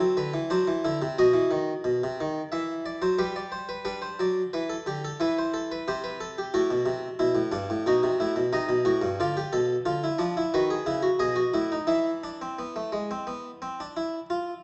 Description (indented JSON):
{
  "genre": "classical, baroque-style 3-part fugue for harpsichord",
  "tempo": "89 BPM",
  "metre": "4/4",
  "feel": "straight",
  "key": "unclear",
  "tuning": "A4 = 439 Hz",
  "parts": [
    { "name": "harpsichord", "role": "solo", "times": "0.0-14.5 s", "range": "G2 to E5", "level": "-27 LUFS", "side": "equal", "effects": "none" }
  ],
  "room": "moderate recital hall reverb, RT60 1.5 s",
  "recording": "dark, warm production, nothing above 8.0 kHz",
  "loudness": "-27 LUFS",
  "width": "mono",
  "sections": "0.0-3.9 A section; 3.9-14.6 B section",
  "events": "none",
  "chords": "0.0 F#7(b5, no3); 1.2 B; 2.5 Em; 3.9 G; 5.2 Cmaj7/E; 6.6 F#dim/A; 7.9 B; 9.2 Bm7b5; 10.6 B7; 11.9 E5",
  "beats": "0.50 | 1.17 1.84 2.51 3.19 | 3.86 4.54 5.21 5.88 | 6.55 7.22 7.88 8.55 | 9.22 9.88 10.56 11.23 | 11.91 12.60 13.29 13.97"
}